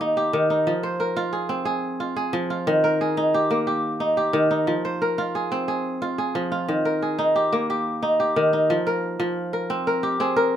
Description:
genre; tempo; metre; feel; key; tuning
west african traditional; 119 BPM (dotted quarters); 12/8; straight; F minor; A4 = 441 Hz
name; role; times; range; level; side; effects
kora; solo; 0.0-10.6 s; Eb3 to C5; -20 LUFS; equal; none
room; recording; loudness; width
light reverb; minimal, uncompressed stereo recording; -20 LUFS; side -10 dB against mid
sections
0.0-8.7 A section; 8.7-10.6 B section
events
none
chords
0.0 Eb; 0.7 Fm; 2.7 Eb; 4.7 Fm; 6.7 Eb; 8.7 Fm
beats
0.16 | 0.66 1.16 1.67 2.17 | 2.67 3.17 3.67 4.17 | 4.67 5.18 5.68 6.18 | 6.68 7.19 7.69 8.19 | 8.70 9.20 9.70 10.20

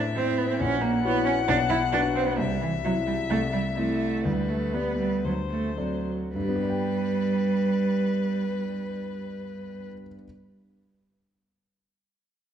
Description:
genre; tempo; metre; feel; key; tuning
quick classical-period movement for piano trio; 104-137 BPM; 4/4; rubato; G major; A4 = 441 Hz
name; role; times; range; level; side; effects
rich violin; melody; 0.0-9.9 s; B4 to F#5; -31 LUFS; left 8 dB; none
dark concert grand piano; accompaniment; 0.0-10.3 s; A#1 to G5; -30 LUFS; left 2 dB; none
warm cello; second line; 0.2-9.9 s; E3 to E4; -26 LUFS; right 4 dB; none
room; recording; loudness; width
wet recital hall reverb, RT60 1.8 s; dark, warm production; -24 LUFS; side -9 dB against mid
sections
0.0-6.3 A section; 6.3-10.8 B section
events
slowing down 1.5-6.3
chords
0.0 Am; 0.6 F#7/A#; 1.5 Bm; 2.4 C; 4.2 G/D; 5.2 D7; 6.3 G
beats
0.16 | 0.60 1.04 1.49 1.93 | 2.38 2.84 3.30 3.77 | 4.25 4.74 5.25 5.78 | 6.34 6.90 7.46 8.01 | 8.57 9.12 9.68 10.23

